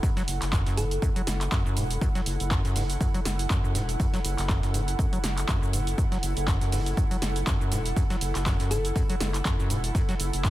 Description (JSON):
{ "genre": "acid house", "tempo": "121 BPM", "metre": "4/4", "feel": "swing 56% on 16ths", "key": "F# minor", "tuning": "A4 = 440 Hz", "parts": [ { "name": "acid bass, square", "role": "riff", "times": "0.0-10.5 s", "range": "F#2 to F#3", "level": "-30 LUFS", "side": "equal", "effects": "tube saturation, sidechain pumping, tape echo" }, { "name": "breakbeat sampler-style drum kit", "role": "drums", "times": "0.0-10.5 s", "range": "hi-hat, snare drum", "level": "-44 LUFS", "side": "right 2 dB", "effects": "none" }, { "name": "electronic kick drum", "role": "drums", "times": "0.0-10.5 s", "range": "none", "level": "-27 LUFS", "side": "equal", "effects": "none" }, { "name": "punchy analog drum machine", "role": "drums", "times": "0.0-10.5 s", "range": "cabasa, handclaps, hi-hat, snare drum", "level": "-33 LUFS", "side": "right 1 dB", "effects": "none" }, { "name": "airy breathy pad", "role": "texture", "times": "0.0-10.5 s", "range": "E4 to F#5", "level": "-35 LUFS", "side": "right 2 dB", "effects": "chorus, sidechain pumping" }, { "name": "round analog bass", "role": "bass", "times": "0.3-10.5 s", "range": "E1 to F#1", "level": "-29 LUFS", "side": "equal", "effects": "sidechain pumping" }, { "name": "thumb-piano-like synth pluck", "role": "melody", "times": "0.8-1.5, 8.7-9.4 s", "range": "A4", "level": "-36 LUFS", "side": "left 2 dB", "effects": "chorus, tape echo" } ], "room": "light reverb", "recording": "dense, heavily limited modern master", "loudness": "-24 LUFS", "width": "side -15 dB against mid", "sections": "0.0-10.5 A section", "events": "none", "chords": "0.0 F#m7" }